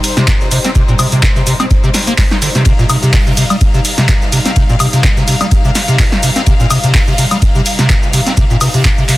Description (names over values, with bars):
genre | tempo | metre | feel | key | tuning
acid house | 126 BPM | 4/4 | swing 55% on 16ths | C minor | A4 = 440 Hz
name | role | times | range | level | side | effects
rich studio string section | sustained chords | 0.0-9.2 s | G3 to F5 | -21 LUFS | left 2 dB | sidechain pumping
oversized low-tuned drum kit | drums | 0.0-9.2 s | hi-hat, ride cymbal, snare drum | -24 LUFS | left 1 dB | high-pass filter on cymbals, high-pass filter on hats, high-pass filter on snare, high-pass filter on room
punchy analog drum machine | drums | 0.0-9.2 s | handclaps, hi-hat, ride cymbal, shaker, snare drum, woodblock | -16 LUFS | equal | overdrive
acid bass, square | riff | 0.2-9.2 s | Bb2 to Eb4 | -14 LUFS | equal | ensemble chorus, sidechain pumping, tape echo
electronic kick drum | drums | 0.3-9.0 s | none | -12 LUFS | equal | none
room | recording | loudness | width
small room ambience | dense, heavily limited modern master | -9 LUFS | side -17 dB against mid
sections
0.0-9.2 A section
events
none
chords
0.0 Cm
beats
0.28 | 0.75 1.23 1.71 2.18 | 2.66 3.13 3.61 4.09 | 4.56 5.04 5.51 5.99 | 6.47 6.94 7.42 7.90 | 8.37 8.85